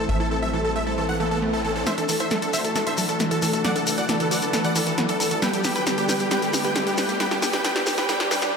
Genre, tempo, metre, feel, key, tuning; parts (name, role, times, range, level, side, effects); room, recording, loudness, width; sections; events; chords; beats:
uplifting trance; 135 BPM; 4/4; straight; A4 = 440 Hz
big supersaw lead; melody; 0.0-8.5 s; G4 to G5; -26 LUFS; equal; ping-pong delay
lush unison pad; sustained chords; 0.0-8.5 s; D3 to C5; -28 LUFS; left 1 dB; chorus, phaser
wide unison pluck; arpeggios; 0.0-8.5 s; E3 to G4; -29 LUFS; right 2 dB; tape echo
tight sequencer bass; bass; 0.0-1.8 s; A1; -29 LUFS; equal
riser and swell; sound effects; 0.0-8.6 s; -33 LUFS; right 2 dB
wide unison pluck; second line; 1.9-8.5 s; G4 to G5; -29 LUFS; equal; tape echo
house drum kit; drums; 1.9-8.5 s; hi-hat, snare drum; -26 LUFS; left 1 dB; low-pass filter on snare, low-pass filter on hats
shekere; percussion; 1.9-8.5 s; -31 LUFS; left 3 dB
wet cathedral reverb, RT60 6.2 s; dreamy mix soaked in reverb, high-pass filter; -20 LUFS; side -5 dB against mid
0.0-1.9 A section; 1.9-8.6 B section
riser 0.0-1.9, 1.9-8.5; filter sweep on analog synth pad 0.0-1.9; build-up 1.9-8.6; drum fill 1.9-8.5; filter sweep on synth pluck 1.9-8.6; swell 8.1-8.6
0.0 Am; 1.9 Dadd9; 5.4 G
| 0.09 0.53 0.98 1.42 | 1.87 2.31 2.76 3.20 | 3.65 4.09 4.53 4.98 | 5.42 5.87 6.31 6.76 | 7.20 7.64 8.09 8.53